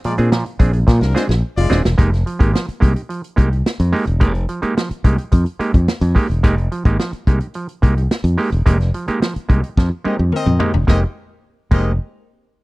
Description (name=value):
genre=funk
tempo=108 BPM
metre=4/4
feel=straight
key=F dorian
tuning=A4 = 440 Hz
part: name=warm horn section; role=second line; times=0.0-1.8, 10.1-11.9 s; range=F3 to Eb5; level=-23 LUFS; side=left 4 dB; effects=none
part: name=modern bright fingered electric bass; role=bass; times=0.0-12.0 s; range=Eb1 to Bb2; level=-16 LUFS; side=equal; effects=none
part: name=swinging big-band drum kit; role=drums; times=0.0-11.8 s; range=crash cymbal, hi-hat, kick drum, snare drum, toms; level=-15 LUFS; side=equal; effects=none
part: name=overdriven clav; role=stabs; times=0.1-11.9 s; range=Bb2 to Ab4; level=-21 LUFS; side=right 2 dB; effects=none
room=little or no reverb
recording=dry, close 1970s-style studio recording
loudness=-14 LUFS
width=side -21 dB against mid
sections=0.0-2.0 A section; 2.0-10.9 B section; 10.9-12.6 C section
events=drum fill 0.9-2.0, 9.8-10.9; band accent 8.7-10.9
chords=0.0 Bb9; 2.0 Fm11